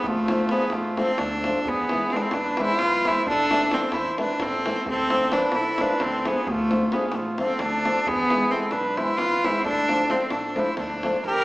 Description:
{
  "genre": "balkan folk, Balkan wedding band",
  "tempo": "263 BPM (eighths)",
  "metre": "7/8",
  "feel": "straight",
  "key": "D dorian sharp4",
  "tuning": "A4 = 440 Hz",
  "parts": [
    { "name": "clear cello", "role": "melody", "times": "0.0-11.4 s", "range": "A3 to Bb4", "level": "-24 LUFS", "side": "equal", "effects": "none" },
    { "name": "warm trumpet", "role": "second line", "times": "0.0-11.4 s", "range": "F4 to C5", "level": "-28 LUFS", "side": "right 1 dB", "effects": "none" },
    { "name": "davul", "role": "percussion", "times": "0.0-11.2 s", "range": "none", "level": "-31 LUFS", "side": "left 1 dB", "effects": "none" },
    { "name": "upright bass", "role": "bass", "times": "0.1-11.4 s", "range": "G1 to E2", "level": "-39 LUFS", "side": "equal", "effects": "none" },
    { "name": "flamenco guitar", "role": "accompaniment", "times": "0.3-11.2 s", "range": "E3 to F4", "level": "-28 LUFS", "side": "left 1 dB", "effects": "none" }
  ],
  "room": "wet recital hall reverb, RT60 1.5 s",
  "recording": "recorded in a church or concert hall, small speaker sound",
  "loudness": "-21 LUFS",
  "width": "side -20 dB against mid",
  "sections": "0.0-11.2 A section",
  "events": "none",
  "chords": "0.0 Dm; 1.7 E; 3.3 Am; 4.9 Dm; 8.1 E; 9.7 Dm"
}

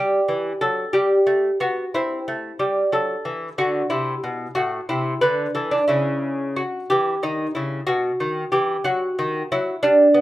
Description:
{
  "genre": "classical, baroque-style dance for lute",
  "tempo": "61 BPM (dotted quarters)",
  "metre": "12/8",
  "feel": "rubato",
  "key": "unclear",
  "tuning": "A4 = 440 Hz",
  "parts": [
    { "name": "lute", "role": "solo", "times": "0.0-10.2 s", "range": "A2 to B4", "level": "-19 LUFS", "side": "equal", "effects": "none" }
  ],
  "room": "moderate large studio reverb, RT60 0.8 s",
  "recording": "band playing live in one room",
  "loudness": "-19 LUFS",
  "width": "side -16 dB against mid",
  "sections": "0.0-10.2 A section",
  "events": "none",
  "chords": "0.0 Em; 1.9 Am; 5.9 C#madd9; 7.9 B"
}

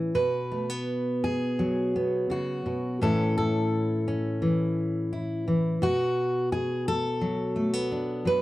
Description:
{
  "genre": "folk, solo fingerstyle acoustic guitar",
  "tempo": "86 BPM",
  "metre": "4/4",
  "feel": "rubato",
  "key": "unclear",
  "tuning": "A4 = 442 Hz",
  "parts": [
    { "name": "fingerpicked steel-string acoustic guitar", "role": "solo", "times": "0.0-8.4 s", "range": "A2 to B4", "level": "-25 LUFS", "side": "equal", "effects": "none" }
  ],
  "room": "moderate small room reverb, RT60 0.5 s",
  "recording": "dark, warm production",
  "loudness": "-25 LUFS",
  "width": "side -16 dB against mid",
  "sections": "0.2-8.4 A section",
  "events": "none",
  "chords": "0.2 B5; 3.0 A; 5.8 Bm"
}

